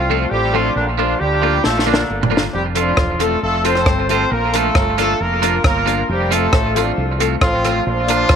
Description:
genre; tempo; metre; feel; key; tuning
ska; 135 BPM; 4/4; straight; F major; A4 = 440 Hz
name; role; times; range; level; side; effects
mellow horn section; melody; 0.0-8.4 s; D3 to C5; -18 LUFS; right 1 dB; tape echo
fingered electric bass; bass; 0.0-8.4 s; E1 to D2; -22 LUFS; equal; none
twangy electric guitar; accompaniment; 0.1-8.2 s; F3 to F4; -23 LUFS; right 10 dB; tape echo
dark upright piano; stabs; 0.1-8.3 s; A3 to Bb4; -24 LUFS; left 11 dB; none
compact cocktail drum kit; drums; 1.6-8.4 s; hi-hat, kick drum, rim click, snare drum, toms; -17 LUFS; equal; none
room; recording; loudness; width
moderate spring reverb, RT60 2.3 s; 1960s-style stereo with parts hard left and right; -14 LUFS; side -7 dB against mid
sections
0.0-8.4 A section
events
drum fill 1.6-2.5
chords
0.0 F; 0.8 Bb; 2.5 F; 4.3 Bb; 6.1 F; 7.9 Bb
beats
0.31 | 0.75 1.20 1.64 2.09 | 2.53 2.97 3.42 3.86 | 4.31 4.75 5.19 5.64 | 6.08 6.53 6.97 7.41 | 7.86 8.30

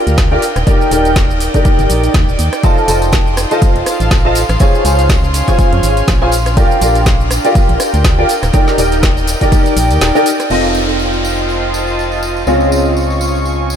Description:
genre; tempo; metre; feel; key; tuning
piano house; 122 BPM; 4/4; swing 56% on 16ths; F mixolydian; A4 = 439 Hz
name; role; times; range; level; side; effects
clear upright piano; riff; 0.0-13.8 s; C4 to A5; -15 LUFS; equal; ensemble chorus, sidechain pumping, diffuse ambient delay
airy breathy pad; texture; 0.0-13.8 s; Db4 to Db6; -20 LUFS; right 1 dB; chorus, sidechain pumping
organ-like FM bass; bass; 0.1-13.8 s; Eb1 to F2; -16 LUFS; equal; sidechain pumping
garage drum kit; drums; 0.1-10.6 s; crash cymbal, hi-hat, rim click, shaker, snare drum; -20 LUFS; equal; overdrive
electronic kick drum; drums; 0.2-9.6 s; none; -12 LUFS; equal; none
tambourine; percussion; 2.6-13.8 s; none; -29 LUFS; equal; none
downlifter; sound effects; 10.5-13.8 s; none; -24 LUFS; equal; none
room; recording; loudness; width
light reverb; none; -10 LUFS; side -8 dB against mid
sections
0.0-10.5 A section; 10.5-13.8 B section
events
kick drops out 10.0-10.5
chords
0.4 Ebmaj7; 2.6 F7; 4.6 Dbmaj7; 6.3 Bb6; 8.3 Ebmaj7; 10.5 F7; 12.5 Dbmaj7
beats
0.18 | 0.67 1.16 1.65 2.14 | 2.63 3.13 3.62 4.11 | 4.60 5.09 5.59 6.08 | 6.57 7.06 7.55 8.04 | 8.54 9.03 9.52 10.01 | 10.50 11.00 11.49 11.98 | 12.47 12.96 13.46

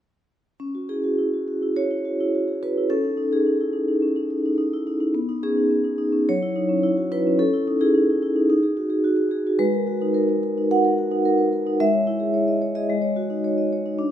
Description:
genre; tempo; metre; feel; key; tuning
classical, contemporary piece for solo vibraphone; 108 BPM; 4/4; rubato; C# minor; A4 = 440 Hz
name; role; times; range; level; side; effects
vibraphone with medium mallets; solo; 0.6-14.1 s; F#3 to F#5; -20 LUFS; equal; none
room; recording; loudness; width
moderate recital hall reverb, RT60 1.7 s; minimal, uncompressed stereo recording; -19 LUFS; side -10 dB against mid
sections
0.6-14.1 A section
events
none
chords
0.6 C#madd11; 2.9 C#madd9; 5.1 B69; 6.3 F#5; 7.4 C#madd9; 8.5 D#madd11; 9.6 G#m9; 11.8 C#madd9/G#; 12.9 F#5/G#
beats
| 0.60 1.17 1.76 2.34 | 2.90 3.46 4.02 4.59 | 5.14 5.70 6.28 6.85 | 7.40 7.95 8.51 9.05 | 9.60 10.14 10.71 11.26 | 11.81 12.35 12.89 13.44 | 13.98

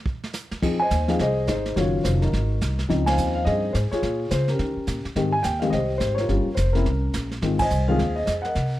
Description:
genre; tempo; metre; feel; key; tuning
jazz piano trio; 212 BPM; 4/4; swing 61% on 8ths; F minor; A4 = 441 Hz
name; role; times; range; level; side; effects
vintage brush drum kit; drums; 0.1-8.8 s; brushed snare drum, crash cymbal, hi-hat, kick drum, ride cymbal, snare drum; -32 LUFS; right 2 dB; none
upright bass; bass; 0.5-8.8 s; F1 to Eb3; -24 LUFS; equal; none
dark concert grand piano; melody; 0.6-8.8 s; Db3 to Ab5; -23 LUFS; left 1 dB; none
room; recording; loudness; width
light reverb; none; -20 LUFS; side -15 dB against mid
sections
0.6-8.8 A section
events
band accent 3.0, 7.6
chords
0.0 N.C.; 0.6 Fm7; 1.8 Ebm9; 2.3 Ab9; 2.9 Dbmaj9; 4.0 Bbm7; 4.6 Eb7; 5.2 Abmaj7; 6.3 Gm7b5; 6.9 C7(no3); 7.4 Fm7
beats
0.06 0.34 | 0.62 0.91 1.19 1.48 | 1.76 2.04 2.33 2.61 | 2.89 3.17 3.46 3.74 | 4.03 4.31 4.59 4.88 | 5.16 5.44 5.73 6.01 | 6.29 6.58 6.86 7.14 | 7.43 7.71 7.99 8.28 | 8.56

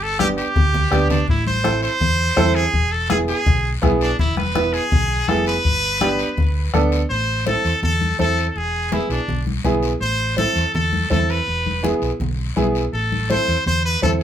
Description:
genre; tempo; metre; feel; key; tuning
latin, cumbia; 165 BPM; 4/4; straight; A harmonic minor; A4 = 440 Hz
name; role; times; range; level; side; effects
brilliant trumpet; melody; 0.0-14.1 s; D4 to C5; -21 LUFS; equal; none
hollow-body short-scale fingered electric bass; bass; 0.0-14.2 s; E1 to E2; -22 LUFS; equal; none
clear upright piano; accompaniment; 0.2-14.2 s; B3 to B4; -22 LUFS; right 2 dB; none
bombo; percussion; 0.2-6.9 s; none; -21 LUFS; left 2 dB; none
congas; percussion; 0.2-14.2 s; none; -26 LUFS; left 2 dB; none
guiro; percussion; 0.2-14.2 s; none; -34 LUFS; left 6 dB; none
room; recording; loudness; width
moderate small room reverb, RT60 0.6 s; minimal, uncompressed stereo recording; -17 LUFS; side -10 dB against mid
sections
0.0-7.1 A section; 7.1-14.2 B section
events
drum fill 0.2-1.3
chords
0.0 G; 1.3 Am; 2.7 E; 5.6 G; 7.1 Am; 8.6 E7; 10.0 Am; 11.5 E; 12.9 Am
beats
0.19 0.56 0.92 | 1.28 1.65 2.01 2.37 | 2.73 3.10 3.46 3.83 | 4.19 4.55 4.92 5.28 | 5.64 6.01 6.37 6.74 | 7.10 7.46 7.83 8.19 | 8.56 8.92 9.29 9.65 | 10.02 10.38 10.75 11.11 | 11.47 11.84 12.21 12.57 | 12.94 13.30 13.66 14.03

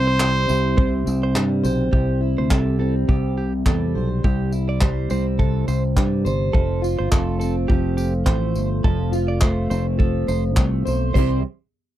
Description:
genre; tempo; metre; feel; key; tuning
acoustic pop; 104 BPM; 4/4; swing 55% on 16ths; C major; A4 = 439 Hz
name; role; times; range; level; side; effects
clear trumpet; melody; 0.0-1.4 s; C5; -22 LUFS; equal; none
fingerpicked plugged-in steel-string acoustic guitar; accompaniment; 0.0-11.4 s; C3 to C5; -23 LUFS; equal; double-tracked left and right
fingered electric bass; bass; 0.0-11.4 s; F1 to G2; -22 LUFS; equal; none
direct-recorded clean electric guitar; arpeggios; 0.1-11.4 s; G4 to D5; -30 LUFS; right 6 dB; none
soft brush drum kit; drums; 0.2-11.3 s; crash cymbal, handclaps, kick drum, tambourine; -20 LUFS; equal; none
room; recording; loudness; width
little or no reverb; dry, close 1970s-style studio recording; -18 LUFS; side -13 dB against mid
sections
0.0-1.9 A section; 1.9-11.2 B section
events
none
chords
0.0 C; 6.5 F; 11.2 C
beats
0.20 0.78 1.35 | 1.93 2.51 3.08 3.66 | 4.24 4.81 5.39 5.97 | 6.54 7.12 7.70 8.27 | 8.85 9.42 10.00 10.58 | 11.15

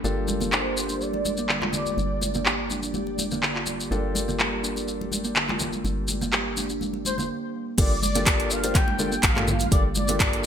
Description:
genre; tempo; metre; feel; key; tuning
afro house; 124 BPM; 4/4; swing 53% on 16ths; G minor; A4 = 439 Hz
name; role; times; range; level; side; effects
ethereal airy pad; sustained chords; 0.0-10.5 s; G3 to D5; -36 LUFS; equal; ensemble chorus, built-in reverb, sidechain pumping
kalimba; arpeggios; 0.0-10.5 s; D3 to G4; -31 LUFS; right 3 dB; sidechain pumping, ping-pong delay
felt-muted upright piano; stabs; 0.0-10.5 s; Bb3 to C5; -33 LUFS; left 3 dB; sidechain pumping, ping-pong delay
woody FM bass; bass; 0.0-10.5 s; G1 to A1; -32 LUFS; equal; sidechain pumping
congas; percussion; 0.0-10.3 s; none; -33 LUFS; left 1 dB; none
maracas; percussion; 0.0-10.5 s; none; -31 LUFS; left 2 dB; none
expressive synth lead; melody; 0.5-2.4, 7.1-10.5 s; C5 to G5; -30 LUFS; equal; ensemble chorus, ping-pong delay
afro-pop drum kit; drums; 0.5-10.4 s; crash cymbal, handclaps, hi-hat, toms; -25 LUFS; equal; low-pass filter on snare, studio reverb, low-pass filter on hats, low-pass filter on cymbals, low-pass filter on toms, gated reverb
electronic kick drum; drums; 7.8-10.3 s; none; -22 LUFS; equal; studio reverb
room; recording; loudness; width
light reverb, studio ambience; bright 1980s-style digital production; -22 LUFS; side -8 dB against mid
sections
0.0-7.8 A section; 7.8-10.5 B section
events
stop 7.3-7.8; drop 7.8-10.5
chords
0.0 Gm7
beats
| 0.04 0.52 1.01 1.49 | 1.98 2.46 2.94 3.43 | 3.91 4.39 4.88 5.36 | 5.85 6.33 6.81 7.30 | 7.78 8.27 8.75 9.23 | 9.72 10.20

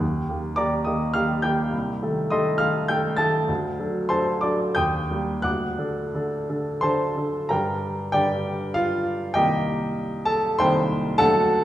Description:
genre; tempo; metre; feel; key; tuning
classical, romantic character piece for solo piano; 84-109 BPM; 3/4; rubato; G minor; A4 = 440 Hz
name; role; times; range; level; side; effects
warm baby grand piano; solo; 0.0-11.6 s; C2 to A6; -21 LUFS; equal; none
room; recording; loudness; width
wet recital hall reverb, RT60 1.7 s; heard from further back in the room; -21 LUFS; side -13 dB against mid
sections
0.0-7.5 A section; 7.5-11.6 B section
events
none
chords
0.0 Eb; 1.7 Adim/C; 3.5 D; 4.8 Eb; 5.4 D; 7.5 Gm; 9.4 Cm7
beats
| 0.02 0.59 1.17 | 1.74 2.33 2.90 | 3.49 4.09 4.77 | 5.45 6.16 6.84 | 7.51 8.15 8.77 | 9.37 9.99 10.61 | 11.21

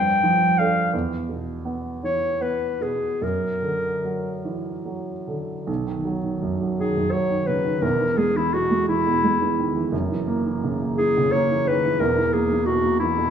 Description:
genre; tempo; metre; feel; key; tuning
classical, impressionist duo for clarinet and grand piano; 48-61 BPM (dotted quarters); 6/8; rubato; B major; A4 = 440 Hz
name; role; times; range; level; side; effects
clear clarinet; melody; 0.0-13.3 s; E4 to G5; -22 LUFS; left 2 dB; none
warm baby grand piano; accompaniment; 0.0-13.3 s; E1 to A4; -24 LUFS; right 3 dB; none
room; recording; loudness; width
wet scoring stage reverb, RT60 1.6 s; small room ambience; -20 LUFS; side -8 dB against mid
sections
0.0-5.7 A section; 5.7-13.3 B section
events
none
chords
0.0 Gsus2; 0.9 E5; 3.2 F#aug7; 5.7 B; 7.8 E; 9.9 F#6; 12.0 E5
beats
| 0.93 2.04 | 3.22 4.45 | 5.68 6.78 | 7.84 8.89 | 9.92 10.97 | 12.00 13.01

